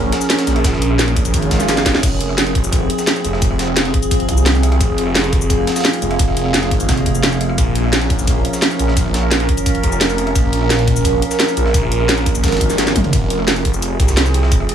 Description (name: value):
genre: dark technical drum and bass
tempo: 173 BPM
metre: 4/4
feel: straight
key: F minor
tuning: A4 = 440 Hz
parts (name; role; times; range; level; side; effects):
- metallic inharmonic drone; sustained chords; 0.0-14.7 s; F3 to Bb4; -22 LUFS; equal; chorus, built-in reverb, sidechain pumping
- phased detuned saw bass; bass; 0.0-14.7 s; F1 to C2; -18 LUFS; equal; phaser, tube saturation
- warbly tape-like pad; texture; 0.0-13.1 s; C4 to F5; -23 LUFS; right 3 dB; chorus, built-in reverb, phaser, sidechain pumping
- breakbeat sampler-style drum kit; drums; 0.1-14.7 s; hi-hat, ride cymbal, snare drum; -28 LUFS; right 1 dB; high-pass filter on cymbals, high-pass filter on snare, high-pass filter on hats
- drum and bass drum kit; drums; 0.1-14.7 s; cabasa, crash cymbal, hi-hat, rim click, snare drum, toms; -19 LUFS; equal; none
- electronic kick drum; drums; 0.6-14.6 s; none; -18 LUFS; equal; none
- swell; sound effects; 1.5-2.0 s; none; -25 LUFS; right 5 dB; none
- pulsing pluck wobble bass; bass; 6.9-7.6 s; F1; -18 LUFS; right 1 dB; chorus
room: light reverb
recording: small room ambience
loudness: -13 LUFS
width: side -9 dB against mid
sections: 0.0-13.1 A section; 13.1-14.7 A section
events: drop 0.0-13.1, 13.1-14.7; swell 1.5-2.0; drum fill 1.7-2.0, 12.8-13.1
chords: 0.0 Bbm; 2.0 Fm; 7.6 Bbm; 13.1 Fm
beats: 0.30 | 0.64 0.99 1.34 1.69 | 2.03 2.38 2.73 3.07 | 3.42 3.77 4.11 4.46 | 4.81 5.15 5.50 5.85 | 6.19 6.54 6.89 7.23 | 7.58 7.93 8.27 8.62 | 8.97 9.31 9.66 10.01 | 10.36 10.70 11.05 11.40 | 11.74 12.09 12.44 12.78 | 13.13 13.48 13.82 14.17 | 14.52